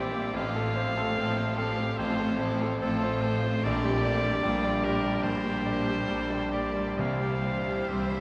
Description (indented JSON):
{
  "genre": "classical, romantic movement for piano and orchestra",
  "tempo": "65-75 BPM",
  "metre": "4/4",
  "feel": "rubato",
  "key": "F major",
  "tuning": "A4 = 440 Hz",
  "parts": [
    { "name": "bright concert grand piano", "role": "melody", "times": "0.0-8.2 s", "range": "A1 to D5", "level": "-33 LUFS", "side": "equal", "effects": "none" },
    { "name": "clear studio violin section", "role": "melody", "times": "0.0-8.2 s", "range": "E4 to C5", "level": "-47 LUFS", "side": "equal", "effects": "none" },
    { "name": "bright oboe", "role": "second line", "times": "0.0-8.2 s", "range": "A4 to F5", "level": "-36 LUFS", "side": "equal", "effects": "none" },
    { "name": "rich chamber violin section", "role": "second line", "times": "0.0-8.2 s", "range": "E4 to C5", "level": "-42 LUFS", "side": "equal", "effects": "none" },
    { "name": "rich symphonic viola section", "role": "accompaniment", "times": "0.0-8.2 s", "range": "E3 to E4", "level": "-38 LUFS", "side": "equal", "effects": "none" },
    { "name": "warm French horn section", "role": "sustained chords", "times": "0.0-8.2 s", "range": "G3 to D4", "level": "-38 LUFS", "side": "equal", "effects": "none" },
    { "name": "rich chamber double bass section", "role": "bass", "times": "0.0-8.2 s", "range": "A1 to C2", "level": "-37 LUFS", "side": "equal", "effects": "none" },
    { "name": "rich studio cello section", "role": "bass", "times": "0.0-8.2 s", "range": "A2 to C3", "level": "-38 LUFS", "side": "equal", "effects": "none" }
  ],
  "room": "wet cathedral reverb, RT60 7.5 s",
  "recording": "none",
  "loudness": "-28 LUFS",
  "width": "mono",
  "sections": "0.0-8.2 A section",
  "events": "none",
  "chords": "0.3 F/A; 3.6 Gm/Bb; 7.0 C"
}